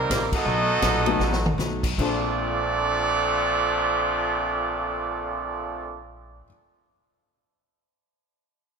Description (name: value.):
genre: jazz, big band swing.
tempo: 148-170 BPM.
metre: 4/4.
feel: swing 63% on 8ths.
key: Bb major.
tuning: A4 = 436 Hz.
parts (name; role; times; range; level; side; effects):
warm trumpet section; melody; 0.0-6.0 s; G3 to Eb5; -26 LUFS; right 1 dB; none.
muted trombone section; second line; 0.0-6.0 s; Bb2 to Eb4; -27 LUFS; right 4 dB; none.
upright bass; bass; 0.0-6.4 s; A1 to B1; -32 LUFS; equal; none.
archtop guitar, miked and amplified; accompaniment; 0.1-6.5 s; B2 to C5; -33 LUFS; left 6 dB; none.
swinging big-band drum kit; drums; 0.1-2.1 s; crash cymbal, hi-hat, kick drum, ride cymbal, snare drum, toms; -28 LUFS; equal; none.
dark baby grand piano; accompaniment; 1.1-6.5 s; Bb2 to A4; -31 LUFS; left 6 dB; none.
room: moderate scoring stage reverb, RT60 2.0 s.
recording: none.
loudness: -22 LUFS.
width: side -6 dB against mid.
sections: 0.0-2.0 A section; 2.0-5.2 B section.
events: slowing down 0.0-2.0; band accent 0.3; drum fill 1.2-1.6.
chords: 0.5 B7; 2.0 Bbmaj9.